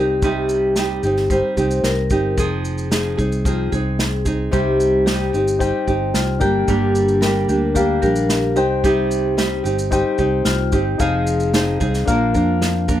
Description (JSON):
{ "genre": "acoustic pop", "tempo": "111 BPM", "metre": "4/4", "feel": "straight", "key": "C minor", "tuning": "A4 = 440 Hz", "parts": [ { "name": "vibraphone with medium mallets", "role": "second line", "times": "0.0-12.8 s", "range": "F4 to C5", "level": "-24 LUFS", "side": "left 6 dB", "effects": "none" }, { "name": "nylon-string guitar", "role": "accompaniment", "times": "0.0-13.0 s", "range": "G2 to Bb4", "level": "-20 LUFS", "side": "right 3 dB", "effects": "none" }, { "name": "fingered electric bass", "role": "bass", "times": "0.0-13.0 s", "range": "F1 to F2", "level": "-22 LUFS", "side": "equal", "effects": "none" }, { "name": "unplugged drum kit", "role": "drums", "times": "0.2-13.0 s", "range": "kick drum, shaker, snare drum", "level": "-23 LUFS", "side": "equal", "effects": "none" }, { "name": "bright reed electric piano", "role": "accompaniment", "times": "4.5-13.0 s", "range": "D4 to G5", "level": "-23 LUFS", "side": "left 6 dB", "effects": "none" } ], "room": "light reverb", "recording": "none", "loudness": "-16 LUFS", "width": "side -12 dB against mid", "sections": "0.0-13.0 A section", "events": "none", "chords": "0.0 Cm; 2.4 Fm7; 4.5 Cm; 6.4 Gm; 8.6 Cm; 11.0 Fm7; 12.1 Bb", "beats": "| 0.23 0.76 1.30 1.84 | 2.38 2.92 3.45 3.99 | 4.53 5.07 5.61 6.15 | 6.69 7.22 7.76 8.30 | 8.84 9.38 9.92 10.46 | 11.00 11.54 12.08 12.62" }